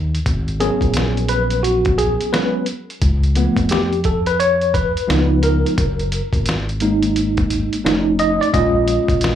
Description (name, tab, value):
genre	hip hop, jazz-hop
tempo	87 BPM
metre	4/4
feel	swing 63% on 16ths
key	G# dorian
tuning	A4 = 440 Hz
part	fingered electric bass	bass	0.0-9.4 s	F1 to E#2	-20 LUFS	equal	none
part	trip hop sampler-style drum kit	drums	0.1-9.4 s	hi-hat, kick drum, snare drum	-22 LUFS	equal	none
part	tine electric piano	accompaniment	0.6-9.4 s	E#3 to Eb5	-17 LUFS	equal	overdrive, fast stereo tremolo, plate reverb, slapback echo
room	light reverb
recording	live gig heard through the venue's PA, club ambience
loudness	-15 LUFS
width	side -10 dB against mid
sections	0.3-9.4 A section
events	tine electric piano solo 0.3-9.4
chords	0.3 G#m11; 3.0 C#aug7; 5.1 C#13; 5.8 F#69; 7.8 F7b13; 8.5 A#m7